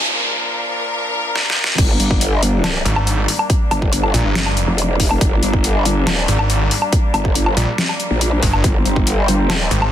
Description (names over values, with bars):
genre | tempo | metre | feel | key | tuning
heavy wobble dubstep | 140 BPM | 4/4 | half-time | G phrygian | A4 = 439 Hz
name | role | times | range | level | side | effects
clear studio string section | sustained chords | 0.0-9.9 s | Bb2 to Bb4 | -23 LUFS | left 1 dB | sidechain pumping, low-pass filter
dubstep drum kit | drums | 1.4-9.9 s | crash cymbal, hi-hat, snare drum, woodblock | -20 LUFS | left 1 dB | overdrive
growl bass | bass | 1.8-9.7 s | F1 to Bb1 | -17 LUFS | equal | chorus, overdrive
electronic kick drum | drums | 1.8-9.0 s | none | -17 LUFS | equal | none
snarling distorted saw bass | bass | 2.9-9.9 s | G1 to Bb1 | -17 LUFS | equal | distortion, overdrive
room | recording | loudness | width
light reverb | dense, heavily limited modern master, high-pass filter | -14 LUFS | side -11 dB against mid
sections
0.0-1.8 A section; 1.8-9.9 B section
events
build-up 0.0-1.8; break 0.1-1.8; drum fill 1.4-1.8; drop 1.8-9.9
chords
0.1 Bb; 1.8 Gm